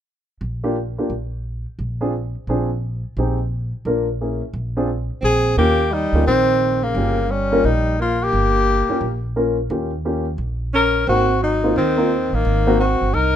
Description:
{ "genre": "jazz, small-group swing and bop", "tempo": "174 BPM", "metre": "4/4", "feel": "swing 63% on 8ths", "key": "Eb mixolydian", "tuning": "A4 = 439 Hz", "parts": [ { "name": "upright bass", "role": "bass", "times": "0.4-13.4 s", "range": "G1 to Eb2", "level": "-22 LUFS", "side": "right 1 dB", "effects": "none" }, { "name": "warm upright piano", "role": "accompaniment", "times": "0.6-12.8 s", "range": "Bb3 to Bb4", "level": "-21 LUFS", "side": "left 1 dB", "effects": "none" }, { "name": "warm tenor saxophone", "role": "melody", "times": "5.2-13.4 s", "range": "Bb3 to Bb4", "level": "-19 LUFS", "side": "left 3 dB", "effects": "none" }, { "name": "breathy alto saxophone", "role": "second line", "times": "5.2-13.4 s", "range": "Db3 to Eb4", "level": "-23 LUFS", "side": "right 4 dB", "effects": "none" } ], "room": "light reverb", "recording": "minimal, uncompressed stereo recording", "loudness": "-17 LUFS", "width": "side -10 dB against mid", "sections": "0.1-5.6 A section; 5.6-13.4 B section", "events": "none", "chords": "0.1 Gm7; 1.4 Bb9; 2.8 Bb13sus4; 3.5 Bb; 4.2 Bbm9b5; 4.9 Bbsus2; 5.6 Eb7; 11.1 Ab7" }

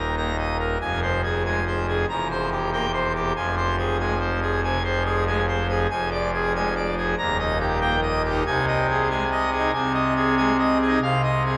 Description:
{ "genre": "classical, organ toccata", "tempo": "94 BPM", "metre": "4/4", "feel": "straight", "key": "unclear", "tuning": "A4 = 442 Hz", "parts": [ { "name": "pipe organ, full organ", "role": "solo", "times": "0.0-11.6 s", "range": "Eb1 to Bb5", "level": "-23 LUFS", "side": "equal", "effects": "none" } ], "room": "wet cathedral reverb, RT60 4.8 s", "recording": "none", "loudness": "-23 LUFS", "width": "mono", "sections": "0.0-11.6 A section", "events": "none", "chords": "0.0 Eb5; 0.8 Fm; 2.1 C7/E; 3.4 Fm; 5.9 Ddim/F; 7.2 Eb; 8.5 Ab/C; 11.0 Fm7/C" }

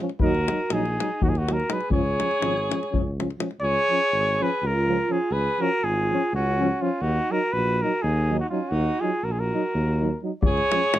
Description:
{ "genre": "balkan folk, Balkan brass band", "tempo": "246 BPM (eighths)", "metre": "7/8", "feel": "straight", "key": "Db mixolydian", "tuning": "A4 = 440 Hz", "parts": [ { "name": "mellow euphonium", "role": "accompaniment", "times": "0.0-10.8 s", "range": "F3 to Gb3", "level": "-31 LUFS", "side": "right 6 dB", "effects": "none" }, { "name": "mellow trombone", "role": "accompaniment", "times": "0.0-10.8 s", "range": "Db4 to Eb4", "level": "-30 LUFS", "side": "left 6 dB", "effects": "none" }, { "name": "davul", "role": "percussion", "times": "0.1-3.6, 10.4-11.0 s", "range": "none", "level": "-26 LUFS", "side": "left 2 dB", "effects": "none" }, { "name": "dark trumpet", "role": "melody", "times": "0.2-11.0 s", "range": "F4 to Db5", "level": "-25 LUFS", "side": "equal", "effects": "none" }, { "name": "mellow alto saxophone", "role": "second line", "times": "0.2-11.0 s", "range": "Db4 to Ab4", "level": "-29 LUFS", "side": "right 3 dB", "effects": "none" }, { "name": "mellow tuba", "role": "bass", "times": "0.2-11.0 s", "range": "Ab1 to Eb2", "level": "-26 LUFS", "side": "equal", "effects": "none" } ], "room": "light reverb", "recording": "close, detailed microphones", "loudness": "-21 LUFS", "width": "side -13 dB against mid", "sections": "0.0-3.6 A section; 3.6-11.0 B section", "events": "none", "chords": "0.2 Ebm; 1.9 Db; 7.0 Ebm; 10.4 Db" }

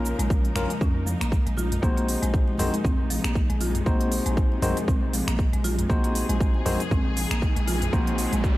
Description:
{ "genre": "afro house", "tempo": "118 BPM", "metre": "4/4", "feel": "swing 56% on 16ths", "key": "unclear", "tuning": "A4 = 441 Hz", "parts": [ { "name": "warm symphonic string section", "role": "sustained chords", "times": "0.0-8.6 s", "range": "C3 to Bb4", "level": "-35 LUFS", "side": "equal", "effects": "sidechain pumping" }, { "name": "buzzing marimba with medium mallets", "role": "arpeggios", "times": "0.0-8.4 s", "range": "F3 to Bb4", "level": "-30 LUFS", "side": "equal", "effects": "sidechain pumping, digital delay" }, { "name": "bell-like tine electric piano", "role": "stabs", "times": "0.0-8.6 s", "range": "Ab3 to C5", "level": "-31 LUFS", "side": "left 2 dB", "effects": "sidechain pumping, digital delay" }, { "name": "warm 808-style bass", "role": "bass", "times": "0.0-8.6 s", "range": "Bb1 to F2", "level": "-28 LUFS", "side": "equal", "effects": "sidechain pumping" }, { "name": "house drum kit", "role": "drums", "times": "0.1-8.6 s", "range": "finger snaps, hi-hat, shaker, toms", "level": "-32 LUFS", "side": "right 1 dB", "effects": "studio reverb" }, { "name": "congas", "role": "percussion", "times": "0.2-8.4 s", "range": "none", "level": "-36 LUFS", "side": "left 1 dB", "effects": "none" }, { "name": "electronic kick drum", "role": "drums", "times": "0.3-8.6 s", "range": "none", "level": "-23 LUFS", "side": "equal", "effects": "studio reverb" }, { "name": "riser", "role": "sound effects", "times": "7.0-8.6 s", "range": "none", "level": "-36 LUFS", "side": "right 2 dB", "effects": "none" } ], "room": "digital ambience", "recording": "none", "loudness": "-22 LUFS", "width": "side -17 dB against mid", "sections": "0.0-8.6 A section", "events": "riser 7.0-8.6", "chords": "0.0 Bbm; 1.8 Ab7/Bb" }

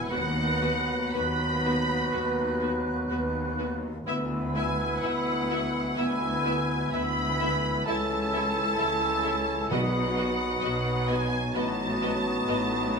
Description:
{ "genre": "classical", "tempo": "56-66 BPM", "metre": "4/4", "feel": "rubato", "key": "unclear", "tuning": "A4 = 440 Hz", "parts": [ { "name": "rich studio violin section", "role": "melody", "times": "0.0-13.0 s", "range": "F#5 to B5", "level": "-32 LUFS", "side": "right 2 dB", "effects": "none" }, { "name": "dark cor anglais", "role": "second line", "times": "0.0-13.0 s", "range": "A4 to B4", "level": "-36 LUFS", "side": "right 2 dB", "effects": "none" }, { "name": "mellow flute section", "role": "second line", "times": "0.0-13.0 s", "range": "D#6 to F#6", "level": "-34 LUFS", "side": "left 1 dB", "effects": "none" }, { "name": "warm clarinet", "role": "second line", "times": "0.0-13.0 s", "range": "D#4 to F#4", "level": "-38 LUFS", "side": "left 3 dB", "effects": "none" }, { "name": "clear bassoon", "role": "accompaniment", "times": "0.0-13.0 s", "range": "B3 to C#4", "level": "-37 LUFS", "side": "equal", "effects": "none" }, { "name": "mellow French horn section", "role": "sustained chords", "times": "0.0-13.0 s", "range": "A3 to B4", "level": "-34 LUFS", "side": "left 2 dB", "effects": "none" }, { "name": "warm trombone section", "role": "sustained chords", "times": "0.0-13.0 s", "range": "A2 to F#3", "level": "-37 LUFS", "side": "right 1 dB", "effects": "none" }, { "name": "warm studio violin section", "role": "second line", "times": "0.1-12.6 s", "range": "A4 to E5", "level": "-37 LUFS", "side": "left 2 dB", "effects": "none" }, { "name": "warm studio viola section", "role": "accompaniment", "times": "0.1-13.0 s", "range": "B3 to F#4", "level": "-37 LUFS", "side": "right 1 dB", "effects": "none" }, { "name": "rich studio cello section", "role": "bass", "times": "0.1-13.0 s", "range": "C#2 to B2", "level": "-35 LUFS", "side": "equal", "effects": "none" }, { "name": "rich studio double bass section", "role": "bass", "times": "0.1-13.0 s", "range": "A1 to D#2", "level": "-34 LUFS", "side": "right 2 dB", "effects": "none" }, { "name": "timpani", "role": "percussion", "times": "9.7-11.1 s", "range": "B2", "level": "-33 LUFS", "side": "right 2 dB", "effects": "none" } ], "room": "wet stone room reverb, RT60 1.0 s", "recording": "minimal, uncompressed stereo recording", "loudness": "-25 LUFS", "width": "side -5 dB against mid", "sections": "0.0-13.0 A section", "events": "none", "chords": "0.1 B/D#; 4.1 E7/D; 7.9 A/C#; 9.7 B; 11.6 B7/A" }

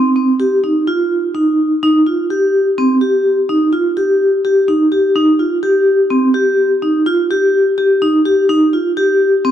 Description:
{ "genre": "progressive instrumental, progressive", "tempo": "126 BPM", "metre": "7/4", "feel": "straight", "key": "C minor", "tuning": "A4 = 439 Hz", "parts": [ { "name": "vibraphone with medium mallets", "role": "solo", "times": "0.0-9.5 s", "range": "C4 to G4", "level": "-11 LUFS", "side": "equal", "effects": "none" } ], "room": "moderate plate reverb, RT60 3.6 s", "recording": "none", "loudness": "-11 LUFS", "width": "side -10 dB against mid", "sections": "0.0-1.8 A section; 1.8-9.5 B section", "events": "none", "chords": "none" }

